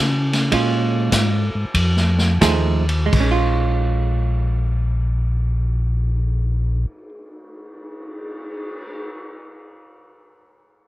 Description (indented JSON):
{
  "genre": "soul jazz organ trio",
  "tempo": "80-108 BPM",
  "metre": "4/4",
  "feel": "swing 66% on 8ths",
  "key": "Bb minor",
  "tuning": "A4 = 440 Hz",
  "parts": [
    { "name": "mellow tonewheel organ", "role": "bass", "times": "0.0-6.9 s", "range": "Bb1 to Db3", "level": "-18 LUFS", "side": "equal", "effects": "chorus vibrato, slow rotary speaker" },
    { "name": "vintage drum kit", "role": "drums", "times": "0.3-8.9 s", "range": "crash cymbal, cymbal swell, hi-hat, kick drum, ride cymbal, snare drum", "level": "-23 LUFS", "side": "equal", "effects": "none" },
    { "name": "hollow-body jazz guitar", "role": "accompaniment", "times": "0.5-7.1 s", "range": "F3 to G#4", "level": "-21 LUFS", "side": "right 6 dB", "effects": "none" }
  ],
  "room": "little or no reverb",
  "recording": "close, detailed microphones",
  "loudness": "-17 LUFS",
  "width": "side -16 dB against mid",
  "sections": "0.0-3.1 A section; 3.1-9.1 B section",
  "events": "slowing down 0.0-3.1",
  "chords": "0.0 Bbm7; 1.7 F7#9; 3.1 Bbm7"
}